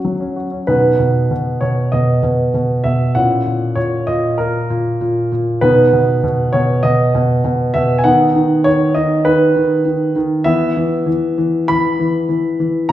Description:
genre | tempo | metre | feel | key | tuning
classical-period piano sonatina | 98 BPM | 4/4 | rubato | B major | A4 = 440 Hz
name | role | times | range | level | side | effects
warm baby grand piano | solo | 0.0-12.9 s | A#2 to B5 | -13 LUFS | equal | none
room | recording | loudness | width
wet recital hall reverb, RT60 1.4 s | heard from further back in the room | -13 LUFS | side -13 dB against mid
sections
0.7-12.9 A section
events
none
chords
0.0 F#; 0.7 B; 3.2 F#7/A#; 5.6 B; 8.1 B/D#; 10.5 E5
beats
0.04 | 0.68 1.31 1.92 2.54 | 3.16 3.77 4.39 5.01 | 5.62 6.23 6.84 7.45 | 8.05 8.66 9.26 9.86 | 10.46 11.07 11.70 12.30 | 12.91

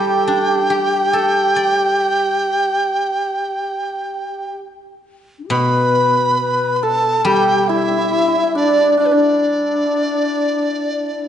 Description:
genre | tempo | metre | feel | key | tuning
chinese traditional, Chinese chamber ensemble | 70 BPM | 4/4 | rubato | G gong mode | A4 = 439 Hz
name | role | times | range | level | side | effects
mellow hollow large dizi | melody | 0.0-11.3 s | B4 to B5 | -18 LUFS | right 2 dB | none
bright reedy low xiao | second line | 0.0-11.3 s | D4 to B4 | -21 LUFS | left 4 dB | none
hammered dulcimer | second line | 0.0-11.3 s | B3 to B4 | -20 LUFS | right 2 dB | none
guzheng | accompaniment | 0.0-9.8 s | B2 to D5 | -22 LUFS | left 1 dB | none
room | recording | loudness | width
wet concert hall reverb, RT60 2.0 s | nothing above 10.6 kHz | -14 LUFS | side -9 dB against mid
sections
0.0-5.5 A section; 5.5-11.3 B section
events
none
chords
none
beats
0.28 1.13 | 1.97 2.83 3.70 4.62 | 5.53 6.40 7.27 8.13 | 8.99 9.84 10.67

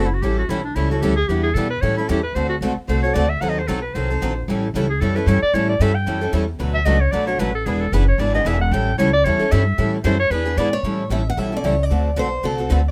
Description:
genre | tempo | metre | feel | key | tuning
acoustic string swing (jazz manouche) | 226 BPM | 4/4 | swing 56% on 8ths | A mixolydian | A4 = 435 Hz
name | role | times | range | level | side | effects
breathy clarinet | second line | 0.0-10.8 s | D4 to G5 | -24 LUFS | equal | none
picked steel-string acoustic guitar | accompaniment | 0.0-12.8 s | B2 to A4 | -28 LUFS | equal | none
picked steel-string acoustic guitar | accompaniment | 0.0-12.8 s | B2 to B4 | -28 LUFS | equal | none
upright bass | bass | 0.0-12.9 s | E1 to B2 | -23 LUFS | equal | none
picked steel-string acoustic guitar | melody | 10.7-12.9 s | A4 to F#5 | -27 LUFS | equal | none
room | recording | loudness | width
light reverb | none | -20 LUFS | mono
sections
0.0-10.8 A section; 10.8-12.9 B section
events
clarinet solo 0.0-10.8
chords
0.2 A7; 1.3 Em7; 1.8 A7; 2.4 D7; 3.4 D#dim7; 4.5 A7; 6.6 Bm7; 7.7 E7; 8.7 A7; 10.3 E7; 10.8 A7; 11.9 D7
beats
| 0.22 0.49 0.76 1.02 | 1.29 1.55 1.82 2.09 | 2.35 2.62 2.88 3.15 | 3.42 3.68 3.95 4.21 | 4.48 4.74 5.01 5.27 | 5.54 5.80 6.07 6.33 | 6.60 6.86 7.13 7.39 | 7.66 7.92 8.19 8.45 | 8.72 8.98 9.25 9.51 | 9.78 10.04 10.31 10.57 | 10.84 11.10 11.37 11.63 | 11.90 12.16 12.43 12.69

